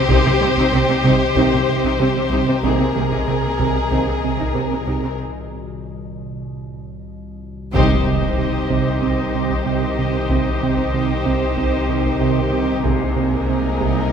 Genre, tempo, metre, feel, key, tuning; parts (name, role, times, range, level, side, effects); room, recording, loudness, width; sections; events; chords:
cinematic, suspense film score; 94 BPM; 4/4; straight; C minor; A4 = 441 Hz
rich chamber violin section; melody; 0.0-14.1 s; Bb4 to C5; -25 LUFS; left 5 dB
rich chamber violin section; second line; 0.0-14.1 s; G4 to Ab4; -26 LUFS; left 2 dB
bubbling stepped-filter texture; sustained chords; 0.0-14.1 s; G4 to Eb5; -30 LUFS; left 2 dB; chorus, built-in reverb
metallic inharmonic drone; drone; 0.0-14.1 s; C2; -29 LUFS; left 1 dB; chorus, built-in reverb, phaser
rich chamber viola section; accompaniment; 0.1-14.1 s; G3 to Eb4; -27 LUFS; left 1 dB
dark French horn section; sustained chords; 0.1-14.1 s; Eb3 to Ab4; -28 LUFS; left 6 dB
mellow trombone section; sustained chords; 0.1-4.1 s; C3 to Eb3; -31 LUFS; equal
fat analog bass; riff; 0.1-14.0 s; C3 to C4; -22 LUFS; right 7 dB
clear chamber double bass section; bass; 0.1-14.1 s; C2; -24 LUFS; right 1 dB
rich studio cello section; bass; 0.1-14.1 s; C3; -26 LUFS; right 1 dB
solo taiko drums; drums; 0.1-14.1 s; -27 LUFS; left 1 dB
impact; sound effects; 7.7-10.3 s; -26 LUFS; left 1 dB
wet concert hall reverb, RT60 2.5 s; -16 LUFS; side -7 dB against mid
0.0-7.7 A section; 7.7-14.1 A section
break 5.2-7.7; drum fill 7.1-7.7; band accent 7.7-8.4; impact 7.7-10.3
0.0 Cm; 2.6 Abadd9/C; 7.7 Cm; 12.9 Abadd9/C